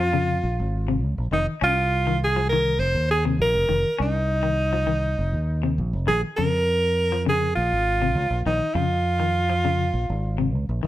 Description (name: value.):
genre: afrobeat.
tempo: 101 BPM.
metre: 4/4.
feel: straight.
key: Bb minor.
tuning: A4 = 443 Hz.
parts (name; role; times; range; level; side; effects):
breathy alto saxophone; melody; 0.0-10.5 s; Eb4 to C5; -23 LUFS; right 1 dB; plate reverb.
electric guitar at the edge of break-up; arpeggios; 0.0-10.9 s; C3 to Db4; -28 LUFS; left 6 dB; harmonic tremolo.
fingered electric bass; bass; 0.0-10.9 s; F1 to F2; -24 LUFS; right 1 dB; none.
room: light reverb.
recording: none.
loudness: -20 LUFS.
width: side -14 dB against mid.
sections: 0.0-10.9 A section.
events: none.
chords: 0.0 Bbm9; 1.3 F7(no3); 6.1 Bbm11.